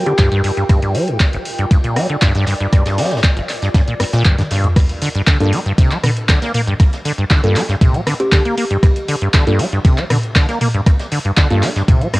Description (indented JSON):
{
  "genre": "acid house",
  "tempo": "118 BPM",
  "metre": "4/4",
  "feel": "straight",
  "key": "G minor",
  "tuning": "A4 = 442 Hz",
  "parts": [
    { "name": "acid bass, saw", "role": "riff", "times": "0.0-12.2 s", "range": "G1 to Bb3", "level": "-18 LUFS", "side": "equal", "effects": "analog chorus, sidechain pumping, cassette tape, analog delay" },
    { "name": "warbly tape-like pad", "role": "texture", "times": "0.0-4.8 s", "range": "F4 to G5", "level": "-27 LUFS", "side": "equal", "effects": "chorus, built-in reverb, sidechain pumping, cassette tape" },
    { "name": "kalimba", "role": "melody", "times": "0.1-0.6, 8.2-8.7 s", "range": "G4", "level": "-22 LUFS", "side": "equal", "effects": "tape echo" },
    { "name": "booming analog drum machine", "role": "drums", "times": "0.1-12.2 s", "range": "crash cymbal, handclaps, hi-hat, rim click, toms", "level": "-20 LUFS", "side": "equal", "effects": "overdrive, cassette tape" },
    { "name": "electronic kick drum", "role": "drums", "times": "0.2-12.0 s", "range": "none", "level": "-12 LUFS", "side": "equal", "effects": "overdrive, cassette tape" },
    { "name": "jazz brush drum kit", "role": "drums", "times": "0.2-12.2 s", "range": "ride cymbal, snare drum", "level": "-30 LUFS", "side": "equal", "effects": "high-pass filter on cymbals, cassette tape, high-pass filter on snare, high-pass filter on room" },
    { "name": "deep mellow chord stab", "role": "stabs", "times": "5.4-11.6 s", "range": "Bb3 to A4", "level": "-22 LUFS", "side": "equal", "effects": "chorus, cassette tape, analog delay" }
  ],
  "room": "light reverb",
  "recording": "home recording on cassette",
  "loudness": "-12 LUFS",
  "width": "side -20 dB against mid",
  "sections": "0.0-4.8 A section; 4.8-12.2 B section",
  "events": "drum fill 4.3-4.8; drop 4.8-12.2",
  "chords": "0.0 Gm7"
}